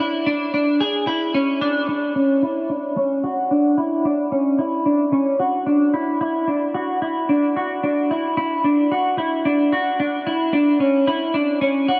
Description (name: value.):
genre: dream pop.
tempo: 111 BPM.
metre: 4/4.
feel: straight.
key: D lydian.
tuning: A4 = 437 Hz.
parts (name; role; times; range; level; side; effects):
clean electric guitar; solo; 0.0-12.0 s; C#4 to G#4; -20 LUFS; equal; analog chorus, low-pass filter, digital delay.
room: wet huge ambient reverb, RT60 3.8 s.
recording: dark, warm production.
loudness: -20 LUFS.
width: mono.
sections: 0.0-1.9 A section; 1.9-12.0 B section.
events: filter sweep on clean electric guitar 1.9-12.0.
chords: none.